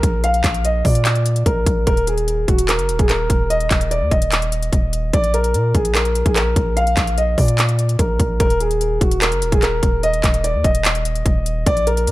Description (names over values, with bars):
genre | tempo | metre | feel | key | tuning
hip hop, trap | 147 BPM | 4/4 | half-time | Eb harmonic minor | A4 = 440 Hz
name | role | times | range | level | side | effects
dark grand piano | melody | 0.0-12.1 s | Gb4 to F5 | -20 LUFS | equal | ping-pong delay
long sustained 808-style bass | bass | 0.0-12.1 s | Eb1 to Bb2 | -20 LUFS | equal | none
trap drum kit | drums | 0.0-12.1 s | handclaps, hi-hat, kick drum | -18 LUFS | equal | none
room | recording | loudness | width
digital ambience | none | -15 LUFS | side -17 dB against mid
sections
0.0-8.4 A section; 8.4-12.1 B section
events
none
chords
0.0 Bb; 1.9 Eb5; 5.1 Bb; 8.4 Eb5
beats
| 0.24 0.64 1.05 1.46 | 1.87 2.28 2.69 3.09 | 3.50 3.91 4.32 4.73 | 5.13 5.54 5.95 6.36 | 6.77 7.17 7.58 7.99 | 8.40 8.81 9.22 9.62 | 10.03 10.44 10.85 11.26 | 11.66 12.07